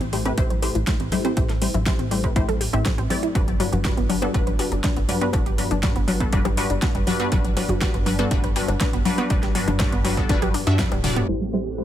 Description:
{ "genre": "progressive house", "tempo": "121 BPM", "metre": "4/4", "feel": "straight", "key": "unclear", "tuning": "A4 = 435 Hz", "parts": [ { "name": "analog pluck", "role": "arpeggios", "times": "0.0-11.8 s", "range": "F#3 to C5", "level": "-27 LUFS", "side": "equal", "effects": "chorus, sidechain pumping, ping-pong delay" }, { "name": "wide unison pluck", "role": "stabs", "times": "0.0-11.8 s", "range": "G2 to E5", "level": "-26 LUFS", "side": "left 2 dB", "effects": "phaser, sidechain pumping, ping-pong delay" }, { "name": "tight sequencer bass", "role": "bass", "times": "0.0-11.8 s", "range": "D1 to G2", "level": "-27 LUFS", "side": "right 1 dB", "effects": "tube saturation, sidechain pumping" }, { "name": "deep house drum kit", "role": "drums", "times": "0.0-11.8 s", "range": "hi-hat, shaker, snare drum, toms", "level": "-30 LUFS", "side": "right 1 dB", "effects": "sidechain pumping on hats, small room ambience, sidechain pumping on toms, sidechain pumping on perc" }, { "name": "electronic kick drum", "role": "drums", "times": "0.4-10.9 s", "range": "none", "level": "-24 LUFS", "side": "right 1 dB", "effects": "small room ambience" }, { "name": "congas and bongos", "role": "percussion", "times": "0.5-11.1 s", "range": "none", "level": "-31 LUFS", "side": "left 5 dB", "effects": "sidechain pumping on perc" }, { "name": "supersaw pad", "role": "sustained chords", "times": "11.3-11.8 s", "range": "A3 to G4", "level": "-31 LUFS", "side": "right 3 dB", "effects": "phaser, sidechain pumping" }, { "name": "twinkling granular texture", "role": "texture", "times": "11.7-11.8 s", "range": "F#6", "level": "-64 LUFS", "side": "left 10 dB", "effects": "none" } ], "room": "little or no reverb", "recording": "low-pass filter", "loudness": "-19 LUFS", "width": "side -11 dB against mid", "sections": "0.0-11.3 A section", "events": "filter sweep on synth arpeggio sound 0.0-11.3; filter sweep on synth pluck 0.0-11.3; drum fill 10.9-11.3", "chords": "0.0 Am7; 3.4 Gmaj7; 11.3 Am7" }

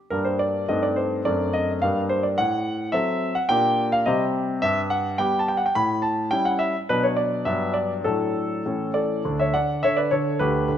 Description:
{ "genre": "classical-period piano sonatina", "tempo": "105 BPM", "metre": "2/4", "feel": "straight", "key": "G minor, D major from 4.6 s", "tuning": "A4 = 438 Hz", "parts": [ { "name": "clear grand piano", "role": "solo", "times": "0.1-10.8 s", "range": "D2 to B5", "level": "-21 LUFS", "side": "equal", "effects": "none" } ], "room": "moderate recital hall reverb, RT60 1.6 s", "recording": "none", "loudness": "-21 LUFS", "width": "side -9 dB against mid", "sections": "0.1-9.3 A section; 9.3-10.8 B section", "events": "none", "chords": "0.1 Gm; 0.7 Am7b5/G; 1.3 D7/F#; 1.8 Gm; 2.4 F#dim/A; 3.5 Gm/Bb; 4.1 Cm; 4.6 Gmaj13; 5.7 A7; 6.9 Bm; 7.5 Gmaj7; 8.1 D/A; 8.7 A; 9.3 D5" }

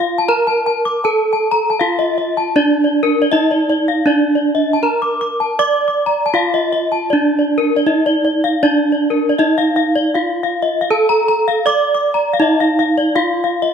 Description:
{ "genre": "gamelan", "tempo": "79 BPM", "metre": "4/4", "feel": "straight", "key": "D pelog", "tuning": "A4 = 440 Hz", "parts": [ { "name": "gamelan-type bronze metallophone", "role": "melody", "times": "0.0-13.7 s", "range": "D4 to D5", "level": "-15 LUFS", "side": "right 3 dB", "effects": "none" }, { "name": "gamelan-type bronze metallophone", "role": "arpeggios", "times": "0.0-13.7 s", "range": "Bb4 to D6", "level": "-17 LUFS", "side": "left 4 dB", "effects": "none" } ], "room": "moderate scoring stage reverb, RT60 1.9 s", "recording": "close, detailed microphones", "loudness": "-13 LUFS", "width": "side -7 dB against mid", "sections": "0.0-13.7 A section", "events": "none", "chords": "none" }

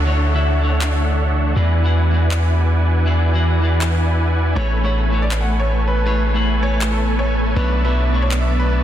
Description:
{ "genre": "future bass", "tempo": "160 BPM", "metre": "4/4", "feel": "half-time", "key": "A major", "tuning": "A4 = 440 Hz", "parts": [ { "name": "clean electric guitar", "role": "accompaniment", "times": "0.0-8.8 s", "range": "B2 to C#6", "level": "-25 LUFS", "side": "left 1 dB", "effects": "spring reverb, tape echo" }, { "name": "ethereal airy pad", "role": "sustained chords", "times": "0.3-8.8 s", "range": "E3 to C#5", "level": "-30 LUFS", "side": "right 1 dB", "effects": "ensemble chorus, built-in reverb, phaser" }, { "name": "Celtic harp", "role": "arpeggios", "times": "0.0-0.6 s", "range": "none", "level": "barely audible", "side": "none", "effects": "none" }, { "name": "dense compressed supersaw", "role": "riff", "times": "0.0-8.8 s", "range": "A3 to A5", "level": "-23 LUFS", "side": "right 1 dB", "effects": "low-pass filter" }, { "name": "long sustained 808-style bass", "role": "bass", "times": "0.0-8.8 s", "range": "A1 to E2", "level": "-17 LUFS", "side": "equal", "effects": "none" }, { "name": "downlifter", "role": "sound effects", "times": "0.0-1.6 s", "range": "none", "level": "-35 LUFS", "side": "right 1 dB", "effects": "none" }, { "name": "electronic handclaps", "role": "drums", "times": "0.8-8.4 s", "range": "none", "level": "-28 LUFS", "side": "left 1 dB", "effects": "overdrive" }, { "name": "clear grand piano", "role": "melody", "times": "4.6-8.8 s", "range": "A4 to F#5", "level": "-26 LUFS", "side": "equal", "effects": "dub echo" } ], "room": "light reverb, digital ambience", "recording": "dense, heavily limited modern master", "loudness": "-15 LUFS", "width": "side -11 dB against mid", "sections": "0.0-8.8 A section", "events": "none", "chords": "0.0 Dmaj9; 1.6 E9; 4.6 Amaj9; 7.6 Bm11" }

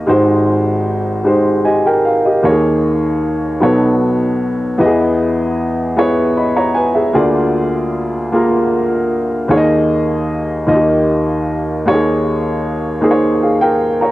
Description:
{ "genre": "gospel", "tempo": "51 BPM (dotted quarters)", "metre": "6/8", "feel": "straight", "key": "unclear", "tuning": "A4 = 440 Hz", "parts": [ { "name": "warm upright piano", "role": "solo", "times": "0.0-14.1 s", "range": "Ab1 to B5", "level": "-12 LUFS", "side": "equal", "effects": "none" } ], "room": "light reverb, small room ambience", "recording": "home recording on cassette", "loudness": "-12 LUFS", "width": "side -16 dB against mid", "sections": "0.0-14.1 A section", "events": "upright piano fill 1.3-2.4", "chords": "0.1 Abmaj7; 2.4 Eb7sus4; 3.6 B9; 4.8 Emaj7; 7.2 Bb7/D; 9.5 Ebsus4; 10.7 Eb; 11.9 Eb7sus4" }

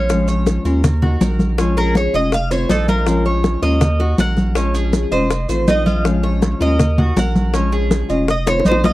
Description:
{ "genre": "latin, Cuban son and guajira", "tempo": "161 BPM", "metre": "4/4", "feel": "straight", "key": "Bb minor", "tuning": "A4 = 435 Hz", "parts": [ { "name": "Cuban tres", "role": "melody", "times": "0.0-8.9 s", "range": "A4 to Gb5", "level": "-21 LUFS", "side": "right 1 dB", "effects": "none" }, { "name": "nylon-string guitar", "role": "accompaniment", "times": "0.0-8.9 s", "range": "Eb3 to Gb4", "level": "-22 LUFS", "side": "left 3 dB", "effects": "none" }, { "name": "Cuban tres", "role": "arpeggios", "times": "0.0-8.9 s", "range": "Db4 to Eb5", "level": "-24 LUFS", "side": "right 2 dB", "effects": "tape echo" }, { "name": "saturated sub bass", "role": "bass", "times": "0.0-8.9 s", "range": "F1 to Eb2", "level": "-18 LUFS", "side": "equal", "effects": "none" }, { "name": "bongos", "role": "percussion", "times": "0.1-8.9 s", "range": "none", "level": "-22 LUFS", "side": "left 5 dB", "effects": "none" }, { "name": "congas", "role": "percussion", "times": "0.1-8.9 s", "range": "none", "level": "-19 LUFS", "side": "equal", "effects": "none" }, { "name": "maracas", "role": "percussion", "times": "0.1-8.9 s", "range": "none", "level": "-35 LUFS", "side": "right 8 dB", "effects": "none" } ], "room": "little or no reverb", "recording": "dry, close 1970s-style studio recording", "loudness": "-14 LUFS", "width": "side -16 dB against mid", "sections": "0.0-8.9 A section", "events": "Cuban tres solo 0.0-8.9; drum fill 8.5-8.9", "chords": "0.1 Bbm7; 0.8 Ebm; 1.6 Bbm7; 2.3 F7; 3.1 Bbm7; 3.8 Ebm; 4.6 Bbm7; 5.3 F7; 6.1 Bbm7; 6.8 Ebm; 7.5 Bbm7; 8.3 F7" }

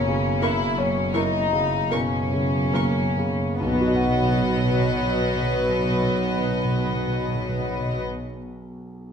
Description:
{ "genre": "classical, romantic movement for piano and orchestra", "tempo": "34-44 BPM", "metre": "4/4", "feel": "rubato", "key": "B major", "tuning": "A4 = 440 Hz", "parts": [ { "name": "warm concert grand piano", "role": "melody", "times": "0.0-9.1 s", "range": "B1 to F#5", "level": "-26 LUFS", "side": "equal", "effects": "none" }, { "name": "rich studio violin section", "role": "second line", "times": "0.0-8.0 s", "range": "B3 to E4", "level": "-27 LUFS", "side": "left 5 dB", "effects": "none" }, { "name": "dark studio cello section", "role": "bass", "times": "0.0-8.0 s", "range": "F#2 to B2", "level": "-30 LUFS", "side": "right 3 dB", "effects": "none" }, { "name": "dark studio double bass section", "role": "bass", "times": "0.0-8.0 s", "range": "F#1 to B1", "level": "-32 LUFS", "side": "right 4 dB", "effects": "none" }, { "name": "warm chamber violin section", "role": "melody", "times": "0.4-8.0 s", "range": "D#5 to C#6", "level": "-32 LUFS", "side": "left 6 dB", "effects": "none" }, { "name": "warm studio viola section", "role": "accompaniment", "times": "0.4-8.0 s", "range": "E3 to B4", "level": "-27 LUFS", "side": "equal", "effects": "none" }, { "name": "timpani", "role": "percussion", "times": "3.6-8.1 s", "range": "B2", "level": "-29 LUFS", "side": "right 2 dB", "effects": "none" } ], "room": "wet recital hall reverb, RT60 1.4 s", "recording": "none", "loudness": "-20 LUFS", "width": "side -7 dB against mid", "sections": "0.0-3.6 A section; 3.6-9.1 B section", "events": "slowing down 0.0-3.6", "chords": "0.0 F#7; 3.6 B" }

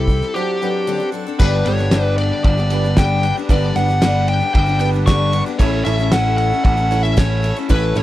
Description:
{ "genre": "folk rock and heartland rock", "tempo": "114 BPM", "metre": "4/4", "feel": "straight", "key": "unclear", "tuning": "A4 = 440 Hz", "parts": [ { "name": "smooth overdriven lead guitar", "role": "melody", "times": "0.0-8.0 s", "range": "G4 to C#6", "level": "-21 LUFS", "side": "left 1 dB", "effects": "none" }, { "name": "picked steel-string acoustic guitar", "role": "accompaniment", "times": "0.0-8.0 s", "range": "G2 to A4", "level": "-23 LUFS", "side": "left 7 dB", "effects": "none" }, { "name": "accordion", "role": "sustained chords", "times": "0.0-8.0 s", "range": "B3 to F#5", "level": "-29 LUFS", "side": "right 3 dB", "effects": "none" }, { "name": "picked electric bass", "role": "bass", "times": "0.0-8.0 s", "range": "G1 to C2", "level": "-18 LUFS", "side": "equal", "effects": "none" }, { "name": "cloth-damped thuddy drum kit", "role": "drums", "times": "0.1-8.0 s", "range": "crash cymbal, kick drum, ride cymbal, snare drum", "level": "-19 LUFS", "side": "equal", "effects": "none" }, { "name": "clear concert grand piano", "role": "accompaniment", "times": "0.3-8.0 s", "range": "B3 to F#5", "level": "-27 LUFS", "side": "right 10 dB", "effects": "none" } ], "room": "little or no reverb", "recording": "dry, close 1970s-style studio recording", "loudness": "-14 LUFS", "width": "side -14 dB against mid", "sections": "0.0-1.4 A section; 1.4-8.0 B section", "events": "break 0.3-1.4", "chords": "0.3 D7; 1.4 G; 5.6 A" }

